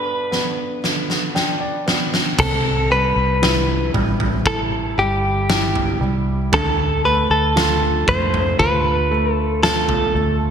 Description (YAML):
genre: pop ballad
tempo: 58 BPM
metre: 4/4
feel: straight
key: C major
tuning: A4 = 440 Hz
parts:
  - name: direct-recorded clean electric guitar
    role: melody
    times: 0.0-10.4 s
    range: G4 to C5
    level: -20 LUFS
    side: left 1 dB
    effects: slapback echo, ping-pong delay
  - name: warm concert grand piano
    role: accompaniment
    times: 0.0-10.5 s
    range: G2 to G5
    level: -24 LUFS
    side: right 3 dB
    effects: slapback echo
  - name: huge arena drum kit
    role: drums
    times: 0.3-10.1 s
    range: crash cymbal, kick drum, snare drum, toms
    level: -21 LUFS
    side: equal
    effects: none
  - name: vintage muted fingered electric bass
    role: bass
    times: 2.4-10.5 s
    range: G1 to F2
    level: -22 LUFS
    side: left 1 dB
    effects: none
room: moderate lush hall reverb, RT60 2.7 s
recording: big arena sound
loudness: -16 LUFS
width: side -7 dB against mid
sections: 0.0-2.4 A section; 2.4-10.5 B section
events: drum fill 0.3-2.4; grand piano fill 0.8-2.4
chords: 0.0 G; 2.4 C6; 6.5 Dm